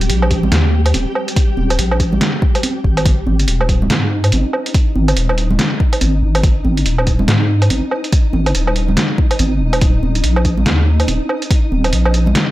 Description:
deep dubstep; 142 BPM; 4/4; swing 60% on 16ths, half-time; A4 = 437 Hz
deep soft wobble bass; bass; 0.0-12.3 s; D#1 to G#2; -15 LUFS; equal; chorus
trip hop sampler-style drum kit; drums; 0.0-12.5 s; hi-hat, snare drum, woodblock; -18 LUFS; right 1 dB; overdrive
flickering grainy texture; texture; 0.0-12.5 s; G3 to G4; -26 LUFS; equal; built-in reverb
electronic kick drum; drums; 0.3-11.6 s; -14 LUFS; equal
congas; percussion; 0.4-12.3 s; -23 LUFS; right 2 dB; dub echo
digital ambience; -12 LUFS; side -16 dB against mid
0.0-12.5 A section
0.0 D#; 3.1 G#5; 9.8 D#5

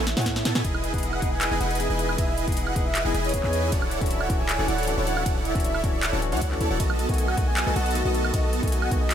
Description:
future bass; 156 BPM; 4/4; half-time; E major; A4 = 440 Hz
supersaw chords; riff; 0.0-9.1 s; B3 to A5; -27 LUFS; right 1 dB; wide subtle chorus, sidechain pumping
warm 808-style bass; bass; 0.0-9.1 s; D1 to A2; -28 LUFS; equal; sidechain pumping
swell; sound effects; 0.0-0.6 s; -37 LUFS; right 6 dB
trap drum kit; drums; 0.1-9.1 s; handclaps, hi-hat, ride cymbal, snare drum, woodblock; -30 LUFS; equal; overdrive
breathy flute-like synth lead; melody; 0.2-9.1 s; C#5 to G#5; -32 LUFS; equal; chorus, sidechain pumping, tape echo
electronic kick drum; drums; 0.3-9.0 s; -27 LUFS; equal
barky tine electric piano; accompaniment; 0.6-9.0 s; D#3 to G#4; -33 LUFS; left 6 dB; overdrive, sidechain pumping, dub echo
digital ambience; -22 LUFS; side -9 dB against mid
0.0-9.1 A section
drum fill 0.0-0.6; swell 0.0-0.6
0.0 Amaj9; 0.6 Emaj7; 3.7 Dmaj9; 6.8 B7

